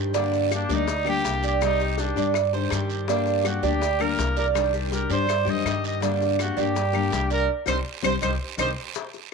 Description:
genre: latin, Cuban son and guajira.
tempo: 164 BPM.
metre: 4/4.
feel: straight.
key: unclear.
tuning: A4 = 441 Hz.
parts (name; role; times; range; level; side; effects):
picked steel-string acoustic guitar; accompaniment; 0.0-8.7 s; C3 to G4; -28 LUFS; left 15 dB; none.
Cuban tres; arpeggios; 0.0-8.7 s; D4 to D5; -26 LUFS; right 11 dB; tape echo.
upright bass; bass; 0.0-8.7 s; C2 to G2; -28 LUFS; equal; none.
bongos; percussion; 0.1-9.3 s; none; -35 LUFS; left 14 dB; none.
guiro; percussion; 0.1-9.3 s; none; -39 LUFS; right 15 dB; none.
maracas; percussion; 0.1-9.3 s; none; -40 LUFS; left 15 dB; none.
warm trumpet; melody; 0.5-8.7 s; D4 to Eb5; -28 LUFS; left 1 dB; none.
claves; percussion; 0.5-8.7 s; none; -32 LUFS; left 13 dB; none.
room: moderate spring reverb, RT60 1.5 s, small room ambience.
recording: 1960s-style stereo with parts hard left and right.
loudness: -22 LUFS.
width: side -5 dB against mid.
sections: 0.0-9.0 A section.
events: band accent 7.5-9.0; drum fill 8.2-9.0.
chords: 0.1 Gm; 1.6 Cmadd9; 3.1 Gm; 4.6 Cmadd9; 6.0 Gm; 7.5 Cm.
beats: | 0.14 0.51 0.88 1.25 | 1.61 1.98 2.35 2.72 | 3.08 3.45 3.82 4.19 | 4.55 4.92 5.29 5.65 | 6.02 6.39 6.75 7.12 | 7.49 7.85 8.22 8.59 | 8.95 9.32.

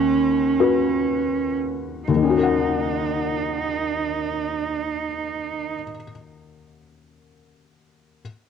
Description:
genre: neoclassical piano and strings.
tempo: 39 BPM (dotted quarters).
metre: 6/8.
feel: rubato.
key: Eb minor.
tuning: A4 = 436 Hz.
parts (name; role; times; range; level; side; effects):
rich cello; second line; 0.0-5.7 s; Db4 to Eb4; -23 LUFS; right 6 dB; none.
felt-muted upright piano; accompaniment; 0.0-8.2 s; D#2 to Gb5; -23 LUFS; left 6 dB; none.
room: wet spring reverb, RT60 1.9 s, small room ambience.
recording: home recording on cassette.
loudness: -20 LUFS.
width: side -7 dB against mid.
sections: 0.0-2.1 A section; 2.1-5.1 B section.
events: slowing down 0.0-2.1.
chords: 0.0 B/D#; 2.1 Ebm7.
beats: 0.59 | 2.08 3.61.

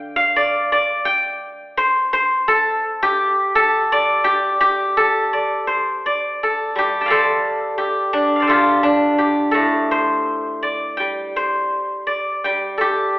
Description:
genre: chinese traditional, Chinese solo plucked strings.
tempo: 84 BPM.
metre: 2/4.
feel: rubato.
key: D yu mode.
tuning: A4 = 440 Hz.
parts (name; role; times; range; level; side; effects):
steel-string zither; solo; 0.0-13.2 s; A2 to A5; -16 LUFS; equal; none.
room: moderate recital hall reverb, RT60 1.4 s.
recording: recorded in a church or concert hall, telephone sound.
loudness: -16 LUFS.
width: side -20 dB against mid.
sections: 0.0-5.3 A section; 5.3-13.2 B section.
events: none.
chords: none.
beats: 0.33 | 1.05 1.76 | 2.47 3.18 | 3.88 4.61 | 5.33 6.06 | 6.78 7.46 | 8.16 8.86 | 9.56 10.28 | 11.02 11.75 | 12.47 13.18.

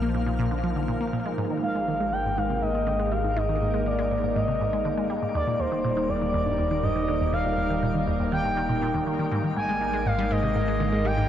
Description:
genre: ambient, sequencer-driven space music.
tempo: 121 BPM.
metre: 4/4.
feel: straight.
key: unclear.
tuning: A4 = 440 Hz.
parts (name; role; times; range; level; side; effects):
evolving wavetable pad; sustained chords; 0.0-11.3 s; F3 to Bb4; -29 LUFS; equal; chorus, built-in reverb.
resonant blip pluck; riff; 0.0-11.2 s; Eb2 to Bb3; -29 LUFS; equal; phaser, cassette tape, ping-pong delay.
round analog bass; bass; 0.0-11.3 s; Eb1 to Bb1; -31 LUFS; equal; none.
twinkling granular texture; texture; 0.0-11.3 s; F5 to D6; -44 LUFS; equal; built-in reverb.
expressive portamento lead; melody; 1.6-11.3 s; C5 to Ab5; -27 LUFS; equal; chorus, ping-pong delay.
room: wet huge ambient reverb, RT60 7.6 s.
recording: worn, warbling old tape, cassette tape, warbly pitch drift.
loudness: -23 LUFS.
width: side -10 dB against mid.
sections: 0.0-1.4 A section; 1.4-11.3 B section.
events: fade-in on synth texture 1.4-11.3.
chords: 0.0 Bbsus4; 1.4 Absus2; 5.3 Eb; 9.3 Absus2.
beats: 0.39 0.89 | 1.38 1.88 2.37 2.87 | 3.37 3.86 4.36 4.85 | 5.35 5.84 6.34 6.84 | 7.33 7.83 8.32 8.82 | 9.32 9.81 10.31 10.80.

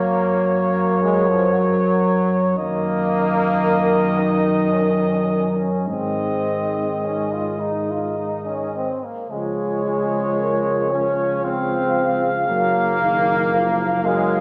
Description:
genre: classical, hymn-like piece for brass band.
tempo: 52-58 BPM.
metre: 3/4.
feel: rubato.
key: Db major.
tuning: A4 = 438 Hz.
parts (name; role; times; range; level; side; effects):
mellow cornet; melody; 0.0-14.4 s; Db5 to F5; -25 LUFS; equal; none.
dark French horn section; second line; 0.0-14.4 s; Ab4 to Bb4; -28 LUFS; equal; none.
bright trombone section; accompaniment; 0.0-14.4 s; F3 to F4; -26 LUFS; equal; none.
warm trombone; accompaniment; 0.0-14.4 s; Eb3 to Gb3; -30 LUFS; equal; none.
dark tuba; bass; 0.0-14.4 s; Gb1 to Ab2; -26 LUFS; equal; none.
room: wet concert hall reverb, RT60 1.9 s.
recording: none.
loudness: -20 LUFS.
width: mono.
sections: 0.0-14.4 A section.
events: none.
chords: 0.0 Gb; 2.6 Ebm/Gb; 5.9 Ab; 9.3 Db; 12.5 Gb.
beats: 0.50 1.53 | 2.58 3.63 4.73 | 5.86 7.02 8.16 | 9.29 10.38 11.43 | 12.49 13.53.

